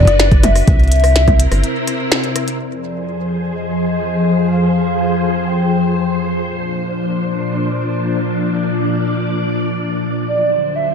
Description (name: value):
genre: IDM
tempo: 125 BPM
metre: 4/4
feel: straight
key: unclear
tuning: A4 = 440 Hz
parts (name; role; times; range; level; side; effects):
- warbly nostalgic lead; melody; 0.0-6.2, 10.3-10.9 s; D5 to G5; -20 LUFS; equal; lush chorus, vintage 12-bit sampler grit, ping-pong delay
- soft string machine; sustained chords; 0.0-10.9 s; D2 to D5; -17 LUFS; left 1 dB; ensemble chorus
- rubbery square bass; bass; 0.0-1.6 s; F#1 to C2; -13 LUFS; equal; tube saturation
- electronic kick drum; drums; 0.0-1.4 s; none; -12 LUFS; equal; none
- glitchy drum kit; drums; 0.1-2.6 s; hi-hat, rim click, snare drum, toms; -18 LUFS; left 1 dB; none
room: light reverb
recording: dark, warm production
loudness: -14 LUFS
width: side -6 dB against mid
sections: 0.0-2.6 A section; 2.6-10.9 B section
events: break 1.6-2.6; band accent 2.1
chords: 0.0 Bm; 0.7 C7; 2.6 Fm; 6.4 Bbadd9; 10.3 D7